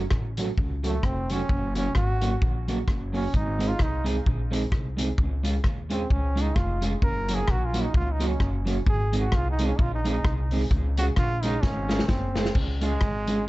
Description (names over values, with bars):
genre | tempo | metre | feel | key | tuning
ska | 130 BPM | 4/4 | swing 58% on 8ths | Db major | A4 = 440 Hz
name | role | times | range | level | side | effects
upright bass | bass | 0.0-13.5 s | F1 to Eb2 | -28 LUFS | equal | none
vintage drum kit | drums | 0.1-13.4 s | crash cymbal, hi-hat, kick drum, rim click, snare drum | -27 LUFS | equal | none
electric guitar at the edge of break-up | accompaniment | 0.4-13.4 s | Gb3 to Ab4 | -30 LUFS | right 2 dB | dub echo
brilliant trombone | melody | 0.9-13.4 s | Ab3 to Bb4 | -31 LUFS | right 1 dB | dub echo, plate reverb
room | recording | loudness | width
light reverb | dark, warm production, nothing above 7.9 kHz | -23 LUFS | side -18 dB against mid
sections
0.0-12.6 A section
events
trombone solo 0.0-12.6; drum fill 11.6-12.6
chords
0.0 Gbm; 1.5 Gb; 3.3 Ab; 5.2 Db; 7.0 Gb; 8.9 Ab; 10.7 Db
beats
0.11 0.57 1.03 | 1.49 1.95 2.41 2.88 | 3.34 3.80 4.26 4.72 | 5.18 5.64 6.10 6.56 | 7.03 7.49 7.95 8.41 | 8.87 9.33 9.79 10.25 | 10.71 11.17 11.63 12.10 | 12.56 13.02 13.48